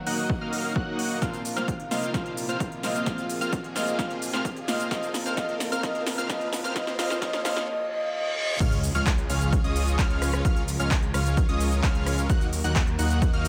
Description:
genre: EDM, festival progressive house.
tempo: 130 BPM.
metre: 4/4.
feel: straight.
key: Db major.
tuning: A4 = 440 Hz.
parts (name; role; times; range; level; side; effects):
clear baby grand piano; accompaniment; 0.0-8.6 s; Bb2 to Gb4; -38 LUFS; equal; sidechain pumping, dub echo.
clear studio string section; sustained chords; 0.0-13.5 s; C3 to Bb4; -40 LUFS; equal; sidechain pumping, low-pass filter.
riser, reverse cymbal and sub drop; sound effects; 0.0-10.4 s; none; -39 LUFS; equal; none.
plucky unison lead; arpeggios; 0.1-13.5 s; Eb6 to Gb6; -37 LUFS; equal; analog chorus, sidechain pumping, dub echo.
dense compressed supersaw; riff; 0.1-13.5 s; Ab3 to Gb5; -34 LUFS; equal; sidechain pumping, low-pass filter, dub echo.
big-room dance drum kit; drums; 0.1-13.5 s; crash cymbal, handclaps, hi-hat, rim click, shaker, snare drum; -34 LUFS; equal; overdrive.
electronic kick drum; drums; 0.3-13.3 s; none; -28 LUFS; equal; none.
breathy flute-like synth lead; melody; 1.9-8.6 s; Eb5; -35 LUFS; equal; chorus, dub echo.
detuned saw bass; bass; 8.6-13.5 s; Db2 to Eb2; -29 LUFS; equal; sidechain pumping.
room: moderate digital room reverb, RT60 1.2 s, digital ambience.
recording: high-pass filter.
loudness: -26 LUFS.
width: mono.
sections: 0.0-8.6 A section; 8.6-13.5 B section.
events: build-up 0.0-8.6; filter sweep on supersaw synth 0.0-8.6; filter sweep on digital synth lead 0.0-8.6; drum fill 1.2-7.7; reverse cymbal 7.7-8.6; drop 8.6-13.5; impact 8.6-10.4.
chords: 0.0 Ebm; 1.2 Bbsus2; 4.9 Dbmaj13/Bb; 8.6 Db; 12.3 Ebm.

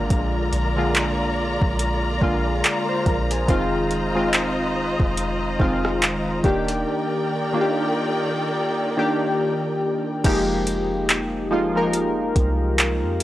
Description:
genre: contemporary R&B.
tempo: 71 BPM.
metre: 4/4.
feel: swing 58% on 16ths.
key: F dorian.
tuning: A4 = 440 Hz.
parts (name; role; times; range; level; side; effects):
warm analog keys; accompaniment; 0.0-13.2 s; D3 to D5; -22 LUFS; left 1 dB; chorus.
dark studio string section; sustained chords; 0.0-10.2 s; Eb3 to Bb5; -26 LUFS; equal; none.
soft 808-style bass; bass; 0.0-13.2 s; Eb1 to F2; -27 LUFS; equal; none.
downlifter; sound effects; 0.0-3.5 s; none; -45 LUFS; right 1 dB; none.
smooth R&B drum kit; drums; 0.1-13.2 s; crash cymbal, handclaps, hi-hat, kick drum, rim click; -21 LUFS; equal; none.
room: little or no reverb.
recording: dry, gritty hardware recording, cassette tape.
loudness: -19 LUFS.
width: side -14 dB against mid.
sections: 0.0-10.2 A section; 10.2-13.2 B section.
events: none.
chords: 0.0 Bb7; 3.5 Fm7; 6.4 Ebmaj7; 10.2 Fm11.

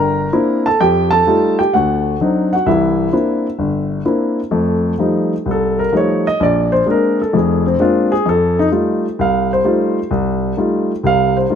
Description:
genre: solo jazz.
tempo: 129 BPM.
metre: 4/4.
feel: swing 68% on 8ths.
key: F major.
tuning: A4 = 440 Hz.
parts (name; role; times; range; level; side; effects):
warm grand piano; solo; 0.0-11.6 s; F1 to Bb5; -13 LUFS; left 1 dB; none.
room: light reverb.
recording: none.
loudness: -13 LUFS.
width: side -8 dB against mid.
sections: 0.0-4.5 A section; 4.5-11.6 B section.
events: grand piano solo 4.5-11.6.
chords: 0.0 C9; 0.8 F9; 1.7 D7b9; 2.7 C9; 4.5 F9; 6.4 Bb9; 8.2 F9.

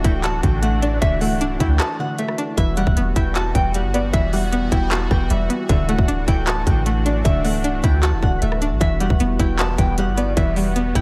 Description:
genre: hip hop, trap.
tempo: 154 BPM.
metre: 4/4.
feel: half-time.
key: E minor.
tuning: A4 = 437 Hz.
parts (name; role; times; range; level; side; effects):
flamenco guitar; melody; 0.0-11.0 s; D5 to A5; -28 LUFS; equal; subtle chorus, diffuse ambient delay.
string-like resonator pluck; accompaniment; 0.0-11.0 s; D3 to F#4; -26 LUFS; equal; chorus.
sweeping resonant pad; sustained chords; 0.0-11.0 s; E3 to F#4; -30 LUFS; equal; chorus.
clean 808-style bass; bass; 0.0-11.0 s; C1 to D2; -23 LUFS; equal; none.
trap drum kit; drums; 0.0-11.0 s; handclaps, hi-hat, kick drum, rim click; -23 LUFS; equal; none.
room: light reverb.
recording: lossy compression artefacts.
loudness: -19 LUFS.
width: mono.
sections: 0.0-2.6 A section; 2.6-11.0 A section.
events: break 1.8-2.6.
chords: 0.0 Dadd9; 2.6 Emadd9; 5.7 Dadd9; 8.8 Emadd9.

